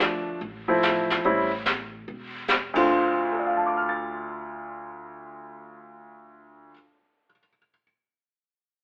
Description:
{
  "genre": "jazz piano trio",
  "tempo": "145 BPM",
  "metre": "4/4",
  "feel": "swing 66% on 8ths",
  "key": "D minor",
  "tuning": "A4 = 440 Hz",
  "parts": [
    { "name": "warm baby grand piano", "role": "melody", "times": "0.0-7.8 s", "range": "D2 to A6", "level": "-27 LUFS", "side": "equal", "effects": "none" },
    { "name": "upright bass", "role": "bass", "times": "0.0-6.7 s", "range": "E1 to D2", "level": "-45 LUFS", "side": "equal", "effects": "none" },
    { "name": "jazz brush drum kit", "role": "drums", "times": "0.0-2.8 s", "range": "brushed snare drum, crash cymbal, hi-hat, kick drum, snare drum", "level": "-29 LUFS", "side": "equal", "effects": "none" }
  ],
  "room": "moderate studio reverb, RT60 0.8 s",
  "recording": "band playing live in one room, telephone sound",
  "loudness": "-25 LUFS",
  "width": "mono",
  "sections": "0.0-2.9 A section; 2.9-6.2 B section",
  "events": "none",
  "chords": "0.0 Dm7; 1.2 A5; 2.7 Dm7"
}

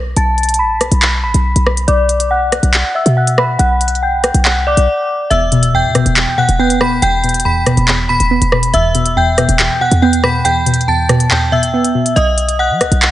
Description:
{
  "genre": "hip hop, drill",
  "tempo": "140 BPM",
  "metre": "4/4",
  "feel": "half-time",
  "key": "E minor",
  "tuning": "A4 = 440 Hz",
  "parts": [
    { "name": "short 808-style bass", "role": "bass", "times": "0.0-13.1 s", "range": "D1 to F#3", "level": "-16 LUFS", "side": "equal", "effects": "none" },
    { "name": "metallic FM bell", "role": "melody", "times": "0.2-13.1 s", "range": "D5 to B6", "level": "-15 LUFS", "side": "equal", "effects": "chorus, low-pass filter" },
    { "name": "drill drum kit", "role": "drums", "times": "0.2-13.1 s", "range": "handclaps, hi-hat, rim click", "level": "-16 LUFS", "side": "equal", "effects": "none" },
    { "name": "warbly dusty pluck", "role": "accompaniment", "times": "5.3-12.2 s", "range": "E2 to B3", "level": "-15 LUFS", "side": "equal", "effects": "chorus, phaser, low-pass filter" }
  ],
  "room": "light reverb, digital ambience",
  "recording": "nothing above 10.6 kHz",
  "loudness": "-10 LUFS",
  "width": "side -14 dB against mid",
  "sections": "0.0-13.1 A section",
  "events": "break 0.0, 4.9-5.3; filter sweep 0.0-5.3; kick muted 10.5-12.2",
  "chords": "0.0 B5; 1.9 Bm; 5.3 Em; 12.2 B"
}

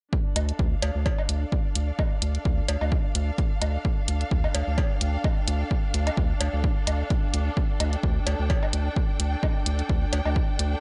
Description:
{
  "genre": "minimal techno",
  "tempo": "129 BPM",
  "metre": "4/4",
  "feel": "swing 55% on 16ths",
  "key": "D minor",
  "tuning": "A4 = 440 Hz",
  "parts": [
    { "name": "electronic kick drum", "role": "drums", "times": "0.1-10.5 s", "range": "none", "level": "-27 LUFS", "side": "equal", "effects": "none" },
    { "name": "pulsing gated texture", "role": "texture", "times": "0.7-10.8 s", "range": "D4 to G5", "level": "-44 LUFS", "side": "equal", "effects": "none" },
    { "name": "warm studio string section", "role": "texture", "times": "0.1-10.8 s", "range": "D4 to G5", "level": "-37 LUFS", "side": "equal", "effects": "sidechain pumping" },
    { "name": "round analog bass", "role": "bass", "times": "0.4-10.8 s", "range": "D2", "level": "-28 LUFS", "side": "equal", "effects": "sidechain pumping" },
    { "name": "electronic hi-hat", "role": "drums", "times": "0.4-10.7 s", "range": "none", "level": "-31 LUFS", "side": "equal", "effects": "none" },
    { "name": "woodblock and cowbell", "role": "percussion", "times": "0.4-10.3 s", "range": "none", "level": "-36 LUFS", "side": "equal", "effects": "analog delay" }
  ],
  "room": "little or no reverb",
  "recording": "dry, gritty hardware recording, nothing above 10.8 kHz",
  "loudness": "-25 LUFS",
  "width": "mono",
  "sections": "0.1-10.8 A section",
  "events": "none",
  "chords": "0.1 Dm"
}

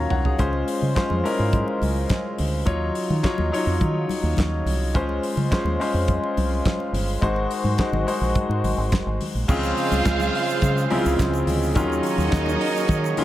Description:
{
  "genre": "disco",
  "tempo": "106 BPM",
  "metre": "4/4",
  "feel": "straight",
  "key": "Db major",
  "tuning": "A4 = 440 Hz",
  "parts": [
    { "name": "clear concert grand piano", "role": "accompaniment", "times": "0.0-13.2 s", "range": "Db3 to Bb5", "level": "-25 LUFS", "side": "left 2 dB", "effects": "none" },
    { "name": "warm French horn section", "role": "sustained chords", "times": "0.0-13.2 s", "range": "Db3 to C5", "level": "-30 LUFS", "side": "right 1 dB", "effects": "none" },
    { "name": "deep dub fingered electric bass", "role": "bass", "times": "0.0-13.1 s", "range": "Gb1 to Eb3", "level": "-24 LUFS", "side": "right 1 dB", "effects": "none" },
    { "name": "damped 70s drum kit", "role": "drums", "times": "0.1-13.2 s", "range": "crash cymbal, handclaps, hi-hat, kick drum, snare drum, toms", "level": "-26 LUFS", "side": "equal", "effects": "none" },
    { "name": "congas", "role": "percussion", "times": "0.1-13.2 s", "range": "none", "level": "-33 LUFS", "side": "left 5 dB", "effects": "none" },
    { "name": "warm studio violin section", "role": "second line", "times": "9.5-13.2 s", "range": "Eb4 to F5", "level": "-27 LUFS", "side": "right 2 dB", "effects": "tape echo" },
    { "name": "warm horn section", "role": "stabs", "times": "9.5-13.2 s", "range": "Ab3 to Db5", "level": "-28 LUFS", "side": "right 6 dB", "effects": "none" },
    { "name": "tube shaker", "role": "percussion", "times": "9.5-13.2 s", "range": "none", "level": "-42 LUFS", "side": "right 9 dB", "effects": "none" }
  ],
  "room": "light reverb, small room ambience",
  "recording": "none",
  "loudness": "-20 LUFS",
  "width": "side -14 dB against mid",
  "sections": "0.0-9.5 A section; 9.5-13.2 B section",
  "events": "drum fill 0.0-0.4",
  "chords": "0.4 Dbmaj7; 2.7 Ebm9; 4.9 Dbmaj7; 7.2 Ab7; 9.5 Dbmaj7; 11.8 Ebm9"
}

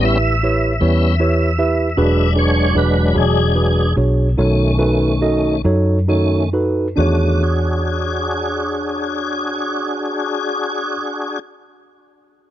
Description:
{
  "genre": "blues",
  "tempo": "44-52 BPM (dotted quarters)",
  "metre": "12/8",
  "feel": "straight",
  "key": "E mixolydian",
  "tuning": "A4 = 440 Hz",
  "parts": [
    { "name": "mellow tine electric piano", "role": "accompaniment", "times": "0.0-11.0 s", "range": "D4 to E5", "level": "-20 LUFS", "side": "right 2 dB", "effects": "none" },
    { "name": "tonewheel organ", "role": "sustained chords", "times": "0.0-11.4 s", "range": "D#3 to E5", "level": "-20 LUFS", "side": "left 2 dB", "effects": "overdrive, chorus vibrato, slow rotary speaker" },
    { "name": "vintage muted fingered electric bass", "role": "bass", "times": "0.0-10.9 s", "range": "E1 to F#2", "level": "-17 LUFS", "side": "equal", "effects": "none" }
  ],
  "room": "little or no reverb",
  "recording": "dry, close 1970s-style studio recording",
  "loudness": "-15 LUFS",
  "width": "side -12 dB against mid",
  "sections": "0.0-7.0 A section; 7.0-12.4 B section",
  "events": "tonewheel organ solo 0.0-7.0; slowing down 0.4-7.0",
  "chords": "0.0 A9; 2.0 E9; 4.4 B9; 7.0 E13"
}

